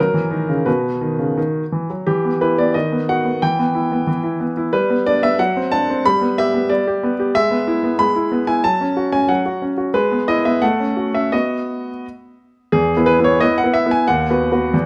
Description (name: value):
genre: classical-period piano sonatina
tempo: 85-94 BPM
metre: 2/4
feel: rubato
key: E minor, E major from 7.3 s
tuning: A4 = 441 Hz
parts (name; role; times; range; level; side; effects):
- clear grand piano; solo; 0.0-14.9 s; D#2 to B5; -18 LUFS; equal; none
room: moderate recital hall reverb, RT60 1.5 s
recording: close, detailed microphones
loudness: -18 LUFS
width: mono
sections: 0.0-2.1 A section; 2.1-12.7 B section; 12.7-14.9 C section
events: none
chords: 0.0 F#; 0.7 B; 2.1 Em; 2.8 B/D#; 3.4 Em; 4.7 G; 5.4 D7/F#; 6.0 G; 7.3 E/G#; 8.6 F#5; 10.0 E/G#; 10.6 F#m/A; 11.3 B; 12.7 E5; 14.1 B/D#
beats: | 0.67 1.37 | 2.07 2.75 | 3.42 4.08 | 4.74 5.39 | 6.04 6.70 | 7.35 7.99 | 8.64 9.30 | 9.96 10.63 | 11.33 12.04 | 12.73 13.41 | 14.07 14.74